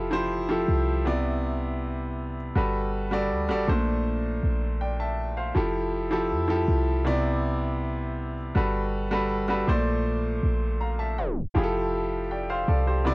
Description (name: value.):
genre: contemporary R&B.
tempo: 80 BPM.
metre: 4/4.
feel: straight.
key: F major.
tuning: A4 = 440 Hz.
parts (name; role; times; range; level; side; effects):
clear baby grand piano; accompaniment; 0.0-13.1 s; Bb2 to Bb5; -26 LUFS; equal; none.
clean 808-style bass; bass; 0.0-13.1 s; F1 to F2; -28 LUFS; equal; none.
room: small room ambience.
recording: home recording on cassette, tape stop.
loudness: -24 LUFS.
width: side -24 dB against mid.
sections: 0.0-11.6 A section; 11.6-13.1 B section.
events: tape stop 11.2-11.6.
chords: 0.0 Fmaj9; 1.1 Cmaj9; 2.6 Gmaj9; 3.7 Bbmaj9; 5.6 Fmaj9; 7.1 Cmaj9; 8.6 Gmaj9; 9.7 Bbmaj9; 11.6 Fmaj9.